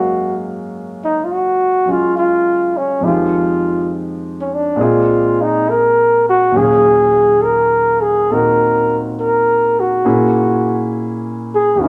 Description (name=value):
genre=jazz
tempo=68 BPM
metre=4/4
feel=swing 68% on 8ths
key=Eb dorian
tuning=A4 = 439 Hz
part: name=mellow flugelhorn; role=melody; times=0.0-11.9 s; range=Db4 to Bb4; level=-16 LUFS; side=equal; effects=none
part: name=warm concert grand piano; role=accompaniment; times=0.0-11.9 s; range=Eb2 to F5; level=-21 LUFS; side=equal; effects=none
room=moderate large studio reverb, RT60 1.2 s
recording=none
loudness=-15 LUFS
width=mono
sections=0.0-11.9 A section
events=none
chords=0.0 Gbmaj9; 3.0 Fm9; 4.8 Bb7; 6.5 Ebm11; 10.0 Bbm7b5